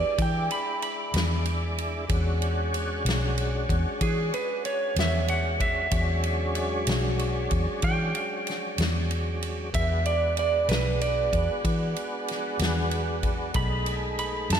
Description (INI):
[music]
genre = slow blues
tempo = 63 BPM (dotted quarters)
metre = 12/8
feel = straight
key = E mixolydian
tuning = A4 = 440 Hz
[part]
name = clean lap steel guitar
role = second line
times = 0.0-14.6 s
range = G#4 to B5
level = -29 LUFS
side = right 3 dB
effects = analog delay, slapback echo
[part]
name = tonewheel organ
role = sustained chords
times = 0.0-14.6 s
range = F#3 to D5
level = -31 LUFS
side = equal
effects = chorus vibrato, slow rotary speaker
[part]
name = vintage muted fingered electric bass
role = bass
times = 0.2-14.6 s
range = B1 to E3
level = -27 LUFS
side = left 1 dB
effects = none
[part]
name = natural country drum kit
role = drums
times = 0.2-14.6 s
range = kick drum, ride cymbal, snare drum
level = -30 LUFS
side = equal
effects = none
[sound]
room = moderate lush hall reverb, RT60 2.5 s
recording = big arena sound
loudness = -24 LUFS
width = side -8 dB against mid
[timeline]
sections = 0.0-14.6 A section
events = electric slide guitar solo 0.0-14.6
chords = 0.0 E13; 13.6 B6